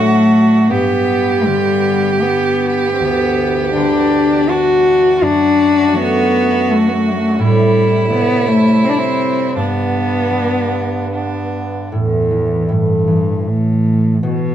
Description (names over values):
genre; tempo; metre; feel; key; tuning
celtic folk, Celtic slow air; 71-86 BPM; 3/4; rubato; A dorian; A4 = 441 Hz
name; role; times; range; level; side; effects
dark cello; melody; 0.0-14.5 s; E2 to F#4; -14 LUFS; left 2 dB; none
warm fiddle; second line; 0.0-11.9 s; D4 to G4; -19 LUFS; right 4 dB; none
concert harp; accompaniment; 0.0-14.5 s; D2 to D4; -18 LUFS; right 1 dB; none
pedal harmonium; sustained chords; 0.0-11.9 s; F#2 to B3; -25 LUFS; equal; none
room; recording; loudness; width
light reverb; band playing live in one room; -12 LUFS; side -10 dB against mid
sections
0.0-11.9 A section; 11.9-14.5 B section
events
none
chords
0.0 D/A; 0.7 G; 5.2 D/F#; 7.4 Am7; 9.6 G; 11.9 A5